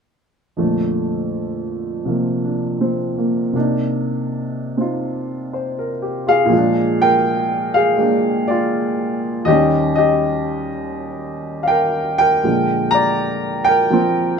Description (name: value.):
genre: solo jazz.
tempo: 81 BPM.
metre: 4/4.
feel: swing 67% on 8ths.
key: Bb major, Bb mixolydian from 6.5 s.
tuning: A4 = 438 Hz.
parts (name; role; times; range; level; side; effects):
warm baby grand piano; solo; 0.6-14.4 s; Eb2 to Bb5; -16 LUFS; equal; none.
room: moderate studio reverb, RT60 0.6 s.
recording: minimal, uncompressed stereo recording.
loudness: -16 LUFS.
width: side -6 dB against mid.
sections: 0.6-6.5 A section; 6.5-14.4 B section.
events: none.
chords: 0.6 Bbmaj7/F; 3.5 Cm9; 6.5 Bb7; 9.5 Eb7; 12.4 Bb7.